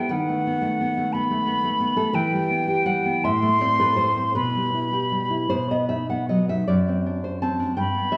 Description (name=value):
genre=romantic duo for flute and classical guitar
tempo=51-60 BPM (dotted quarters)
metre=6/8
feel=rubato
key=unclear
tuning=A4 = 439 Hz
part: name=silver concert flute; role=melody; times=0.0-8.2 s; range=F#5 to C6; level=-25 LUFS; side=equal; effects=none
part: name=nylon-string guitar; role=accompaniment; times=0.0-8.2 s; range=F#2 to A5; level=-25 LUFS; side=equal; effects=none
room=wet recital hall reverb, RT60 1.3 s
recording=recorded in a church or concert hall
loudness=-23 LUFS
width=mono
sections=0.0-8.2 A section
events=none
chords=0.1 B7/D#; 2.1 Em; 3.2 Am; 4.4 Em/B; 5.5 B; 6.7 D7/F#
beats=| 0.11 1.13 | 2.15 3.23 | 4.36 5.52 | 6.68 7.79